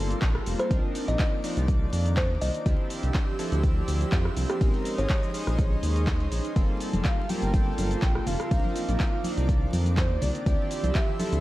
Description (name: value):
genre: deep house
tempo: 123 BPM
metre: 4/4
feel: swing 53% on 16ths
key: G minor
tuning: A4 = 436 Hz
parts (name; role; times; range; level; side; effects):
- airy breathy pad; sustained chords; 0.0-11.4 s; Bb3 to E6; -38 LUFS; right 1 dB; chorus, sidechain pumping
- chorused polysynth; stabs; 0.0-11.4 s; F3 to D5; -33 LUFS; equal; sidechain pumping, analog delay
- round analog bass; bass; 0.0-11.4 s; F1 to F2; -27 LUFS; equal; sidechain pumping
- granular cloud pad; texture; 0.0-11.4 s; Eb3 to E6; -38 LUFS; right 1 dB; built-in reverb, sidechain pumping
- punchy analog drum machine; drums; 0.1-11.4 s; cabasa, handclaps, hi-hat, rim click; -36 LUFS; equal; none
- breakbeat sampler-style drum kit; drums; 0.2-11.3 s; hi-hat, snare drum; -47 LUFS; equal; none
- electronic kick drum; drums; 0.2-11.1 s; none; -25 LUFS; equal; none
- buzzing kalimba; melody; 0.6-5.1 s; G4 to Eb5; -33 LUFS; equal; vintage 12-bit sampler grit, tape echo
- congas; percussion; 6.9-11.3 s; none; -33 LUFS; equal; sidechain pumping on perc
- breathy flute-like synth lead; melody; 7.0-11.4 s; C5 to G5; -35 LUFS; right 1 dB; analog chorus, analog delay
room: little or no reverb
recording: vinyl crackle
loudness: -23 LUFS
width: side -16 dB against mid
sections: 0.0-11.4 A section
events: none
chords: 0.0 Gm11; 0.7 Cm11; 2.7 Dm11; 4.6 Bbm11; 6.6 Gm11; 8.5 Cm11; 10.5 Dm11